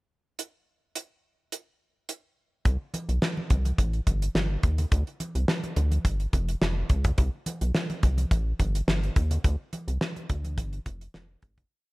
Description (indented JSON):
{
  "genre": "early-eighties boogie funk",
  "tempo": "106 BPM",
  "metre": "4/4",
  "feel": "straight",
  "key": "unclear",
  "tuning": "A4 = 440 Hz",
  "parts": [
    { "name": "damped 70s drum kit", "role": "drums", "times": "0.4-11.7 s", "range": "hi-hat, kick drum, snare drum", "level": "-26 LUFS", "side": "equal", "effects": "gated reverb" },
    { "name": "congas", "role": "percussion", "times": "2.6-11.7 s", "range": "none", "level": "-38 LUFS", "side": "right 1 dB", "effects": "none" },
    { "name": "rubbery square bass", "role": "bass", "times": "2.7-11.6 s", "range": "F1 to Eb2", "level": "-26 LUFS", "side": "equal", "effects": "none" }
  ],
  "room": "small room ambience",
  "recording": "none",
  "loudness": "-24 LUFS",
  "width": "side -22 dB against mid",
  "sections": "0.4-2.7 pickup bar; 2.7-11.7 breakdown",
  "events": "fade-out 9.4-11.7",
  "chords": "none"
}